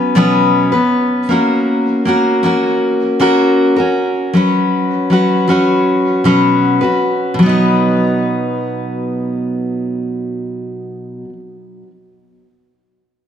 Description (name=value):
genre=pop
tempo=79 BPM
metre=4/4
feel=straight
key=B major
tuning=A4 = 440 Hz
part: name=picked steel-string acoustic guitar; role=solo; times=0.0-11.4 s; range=B2 to B4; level=-12 LUFS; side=equal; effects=digital delay
room=wet plate reverb, RT60 2.5 s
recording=none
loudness=-12 LUFS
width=side -9 dB against mid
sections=0.0-7.4 A section; 7.4-10.4 B section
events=none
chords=0.0 Bsus2; 1.3 F#/A#; 4.3 Bsus2; 7.4 B